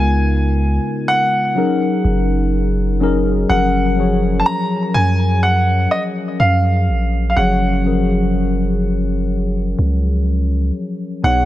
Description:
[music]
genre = contemporary R&B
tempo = 62 BPM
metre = 4/4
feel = straight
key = F# major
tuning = A4 = 439 Hz
[part]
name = clear baby grand piano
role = melody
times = 0.0-11.5 s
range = D#5 to A#5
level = -19 LUFS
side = right 1 dB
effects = ping-pong delay
[part]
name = mellow tine electric piano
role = accompaniment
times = 0.0-11.5 s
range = B2 to C#5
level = -18 LUFS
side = left 2 dB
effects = analog chorus
[part]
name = long sustained 808-style bass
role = bass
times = 0.0-11.5 s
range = F#1 to F#2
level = -17 LUFS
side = right 1 dB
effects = none
[sound]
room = light reverb, small room ambience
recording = none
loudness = -14 LUFS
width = side -14 dB against mid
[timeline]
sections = 0.0-3.5 A section; 3.5-11.5 B section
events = none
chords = 0.0 C#13; 1.6 F#69; 3.5 F#maj9

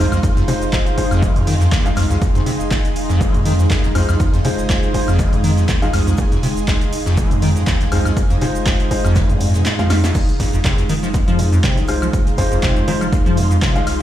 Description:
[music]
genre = acid house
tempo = 121 BPM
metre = 4/4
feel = swing 55% on 16ths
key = F minor pentatonic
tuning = A4 = 440 Hz
[part]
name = string machine, full ensemble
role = sustained chords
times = 0.0-14.0 s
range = Ab3 to Ab4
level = -25 LUFS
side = equal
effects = ensemble chorus, sidechain pumping
[part]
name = acid bass, square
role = riff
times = 0.0-13.8 s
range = F1 to F3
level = -19 LUFS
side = equal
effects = overdrive, lush chorus, sidechain pumping, digital delay
[part]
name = warm concert grand piano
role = stabs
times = 0.0-13.8 s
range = Ab3 to F5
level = -25 LUFS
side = left 1 dB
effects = digital delay
[part]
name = warm sub bass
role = bass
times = 0.0-14.0 s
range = F1 to F2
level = -20 LUFS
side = equal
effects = sidechain pumping
[part]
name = ethereal airy pad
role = texture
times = 0.0-14.0 s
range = Eb4 to C6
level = -27 LUFS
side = right 2 dB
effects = ensemble chorus, built-in reverb, tremolo, sidechain pumping
[part]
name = punchy analog drum machine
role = drums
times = 0.1-14.0 s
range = crash cymbal, handclaps, hi-hat, shaker, snare drum, woodblock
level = -26 LUFS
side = equal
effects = overdrive
[part]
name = electronic kick drum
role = drums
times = 0.2-13.7 s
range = none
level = -18 LUFS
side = equal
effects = overdrive
[part]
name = soft brush drum kit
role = drums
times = 0.2-14.0 s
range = hi-hat, shaker, snare drum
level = -32 LUFS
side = left 1 dB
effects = sidechain pumping on hats, high-pass filter on hats, high-pass filter on snare, sidechain pumping on perc, high-pass filter on perc, high-pass filter on room
[sound]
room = light reverb, studio reverb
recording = played on a big sound system in a bare room, stone room reverb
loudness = -14 LUFS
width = side -12 dB against mid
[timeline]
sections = 0.0-10.2 A section; 10.2-14.0 A section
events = drop 0.0-10.2, 10.2-14.0; kick drops out 9.7-10.2; drum fill 9.7-10.2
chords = 0.0 Fm7

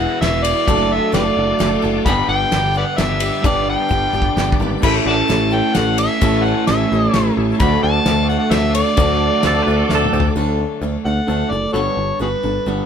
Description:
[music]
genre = folk rock and heartland rock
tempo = 130 BPM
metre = 3/4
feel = straight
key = D major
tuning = A4 = 439 Hz
[part]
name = overdriven harmonica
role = melody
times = 0.0-12.9 s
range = F#4 to B5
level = -20 LUFS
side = left 1 dB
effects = none
[part]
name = picked steel-string acoustic guitar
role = accompaniment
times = 0.0-12.9 s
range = G2 to A4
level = -26 LUFS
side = left 6 dB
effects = none
[part]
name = bright tonewheel organ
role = sustained chords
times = 0.0-10.3 s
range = C#4 to E5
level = -29 LUFS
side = left 1 dB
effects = slow rotary speaker, overdrive, chorus vibrato
[part]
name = electric guitar through a small old amp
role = riff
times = 0.0-12.9 s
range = E2 to A4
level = -20 LUFS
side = right 3 dB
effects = none
[part]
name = picked electric bass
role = bass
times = 0.0-12.8 s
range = E1 to D2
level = -21 LUFS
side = left 1 dB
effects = none
[part]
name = damped 70s drum kit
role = drums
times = 0.2-10.3 s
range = crash cymbal, kick drum, ride cymbal, snare drum, toms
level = -21 LUFS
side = left 1 dB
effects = none
[part]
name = twangy electric guitar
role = second line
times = 9.5-10.3 s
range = A4 to B4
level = -22 LUFS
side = right 4 dB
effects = spring reverb
[sound]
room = light reverb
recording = band playing live in one room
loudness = -14 LUFS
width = side -8 dB against mid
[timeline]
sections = 0.0-10.4 A section; 10.4-12.9 B section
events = drum fill 3.9-4.8, 9.9-10.4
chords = 0.0 E; 0.7 D/F#; 2.1 G; 4.8 A; 7.6 D; 11.7 Gadd9

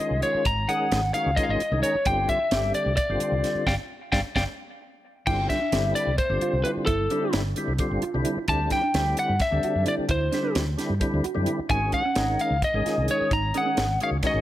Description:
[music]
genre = electric jazz fusion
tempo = 261 BPM (eighths)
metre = 7/8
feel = straight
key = unclear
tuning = A4 = 441 Hz
[part]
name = lightly driven lead guitar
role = melody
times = 0.0-14.4 s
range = A4 to Bb5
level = -25 LUFS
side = left 1 dB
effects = none
[part]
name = percussive tonewheel organ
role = accompaniment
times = 0.0-14.4 s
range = D3 to Ab4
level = -29 LUFS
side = left 1 dB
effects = slow rotary speaker, overdrive, chorus vibrato
[part]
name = mellow fretless electric bass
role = bass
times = 0.0-14.4 s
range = G1 to G2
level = -27 LUFS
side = equal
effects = none
[part]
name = tight funk drum kit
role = drums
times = 0.0-14.3 s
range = crash cymbal, hi-hat, kick drum, snare drum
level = -29 LUFS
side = right 1 dB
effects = none
[part]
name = mellow electric guitar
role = stabs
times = 5.3-13.9 s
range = Db4 to F#4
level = -33 LUFS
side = right 8 dB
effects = analog chorus, analog delay
[sound]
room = light reverb, small room ambience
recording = none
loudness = -22 LUFS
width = side -14 dB against mid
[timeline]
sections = 0.0-5.3 A section; 5.3-14.4 A section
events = band accent 3.7-5.3; drum fill 4.6-5.3; tonewheel organ fill 4.6-5.3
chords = 0.0 Ab7sus4; 2.1 G7sus4; 8.5 D9sus4; 11.7 Ab7sus4

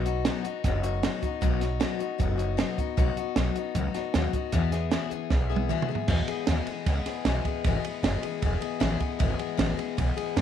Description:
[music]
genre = rockabilly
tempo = 154 BPM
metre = 4/4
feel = straight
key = E major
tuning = A4 = 440 Hz
[part]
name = picked steel-string acoustic guitar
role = accompaniment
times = 0.0-10.4 s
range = E2 to G#4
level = -30 LUFS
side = left 11 dB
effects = none
[part]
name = upright bass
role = bass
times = 0.0-10.4 s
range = E1 to F#2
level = -28 LUFS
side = right 1 dB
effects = none
[part]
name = compact cocktail drum kit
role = drums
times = 0.1-10.4 s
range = crash cymbal, hi-hat, kick drum, ride cymbal, snare drum, toms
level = -29 LUFS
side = right 4 dB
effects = none
[sound]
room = light reverb, studio reverb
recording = 1960s-style stereo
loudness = -25 LUFS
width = side -9 dB against mid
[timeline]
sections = 0.0-6.1 A section; 6.1-10.4 B section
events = drum fill 5.3-6.1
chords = 0.0 B; 4.5 E

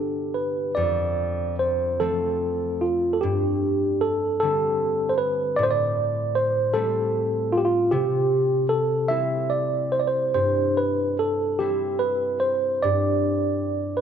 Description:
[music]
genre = celtic folk, Celtic slow air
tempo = 50 BPM (dotted quarters)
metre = 6/8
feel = uneven beats, rubato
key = G mixolydian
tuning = A4 = 440 Hz
[part]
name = tine electric piano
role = melody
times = 0.0-14.0 s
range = F4 to E5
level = -22 LUFS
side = right 2 dB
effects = medium stereo tremolo
[part]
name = concert harp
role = accompaniment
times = 0.0-14.0 s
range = F2 to E4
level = -27 LUFS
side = left 3 dB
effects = none
[sound]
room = moderate concert hall reverb, RT60 2.3 s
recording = none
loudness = -21 LUFS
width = side -8 dB against mid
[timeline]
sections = 0.8-14.0 A section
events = none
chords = 0.0 G; 0.8 F; 3.2 Gsus4; 5.6 Am7; 7.9 C; 12.8 G5

